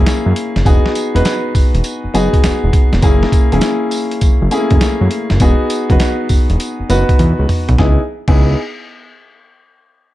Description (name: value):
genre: R&B, new jack swing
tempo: 101 BPM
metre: 4/4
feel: swing 66% on 16ths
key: C# minor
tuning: A4 = 440 Hz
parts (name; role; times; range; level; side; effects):
- dark baby grand piano; accompaniment; 0.0-8.6 s; A3 to B4; -17 LUFS; left 1 dB; none
- fat analog bass; bass; 0.0-8.6 s; E1 to F#2; -14 LUFS; equal; none
- boom bap sampler-style drum kit; drums; 0.1-8.4 s; crash cymbal, hi-hat, kick drum, snare drum, tambourine, toms; -14 LUFS; equal; none
room: light reverb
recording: dark, warm production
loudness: -11 LUFS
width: side -15 dB against mid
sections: 0.0-7.8 A section; 7.8-10.1 B section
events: drum fill 7.2-7.8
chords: 0.0 F#7; 0.7 Emaj9; 3.0 F#7; 5.4 Emaj9; 7.8 C#m7